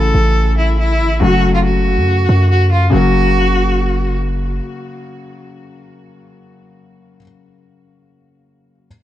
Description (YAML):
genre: hip hop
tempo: 140 BPM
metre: 4/4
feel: half-time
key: unclear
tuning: A4 = 441 Hz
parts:
  - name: bright cello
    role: melody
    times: 0.0-4.2 s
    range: E4 to A4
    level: -18 LUFS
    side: right 1 dB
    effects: low-pass filter, ping-pong delay
  - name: felt-muted upright piano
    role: accompaniment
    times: 0.0-8.9 s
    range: C#3 to F#4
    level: -19 LUFS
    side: left 4 dB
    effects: low-pass filter
  - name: hard-hitting 808-style bass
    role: bass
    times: 0.0-4.6 s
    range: F#1 to F#2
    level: -14 LUFS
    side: equal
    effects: none
room: small room ambience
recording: dark, warm production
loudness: -12 LUFS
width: side -13 dB against mid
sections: 0.0-2.9 A section; 2.9-6.4 B section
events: none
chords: 0.0 A; 1.2 F#m; 2.9 F#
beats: 0.36 0.79 | 1.22 1.65 2.08 2.50 | 2.93 3.36 3.79 4.22 | 4.65 5.08 5.50 5.93